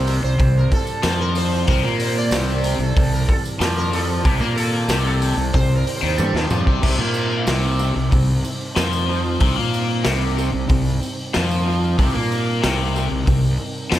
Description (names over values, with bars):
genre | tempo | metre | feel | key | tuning
psychedelic rock | 93 BPM | 4/4 | straight | C minor | A4 = 440 Hz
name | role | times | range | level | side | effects
mellow tonewheel organ | sustained chords | 0.0-14.0 s | Eb3 to D5 | -34 LUFS | right 4 dB | none
cranked stack guitar | riff | 0.0-14.0 s | C3 to Bb3 | -22 LUFS | left 1 dB | overdrive, phaser, tape echo
fuzz fingered electric bass | bass | 0.0-14.0 s | C2 to Bb2 | -22 LUFS | equal | overdrive
tanpura | drone | 0.0-13.8 s | C2 to C3 | -36 LUFS | equal | none
sitar | melody | 0.1-6.8 s | G4 to D5 | -26 LUFS | right 3 dB | tape echo
raw garage drum kit | drums | 0.1-14.0 s | crash cymbal, hi-hat, kick drum, snare drum, toms | -22 LUFS | equal | none
tambourine | percussion | 0.1-14.0 s | none | -38 LUFS | right 7 dB | none
room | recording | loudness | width
small room ambience | echo-heavy mix | -17 LUFS | side -13 dB against mid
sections
0.0-6.8 A section; 6.8-14.0 B section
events
sitar solo 0.0-6.8; drum fill 6.2-6.8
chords
0.0 Cm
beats
0.40 1.04 | 1.69 2.33 2.97 3.62 | 4.26 4.91 5.55 6.19 | 6.83 7.48 8.12 8.77 | 9.41 10.05 10.70 11.34 | 11.98 12.63 13.27 13.91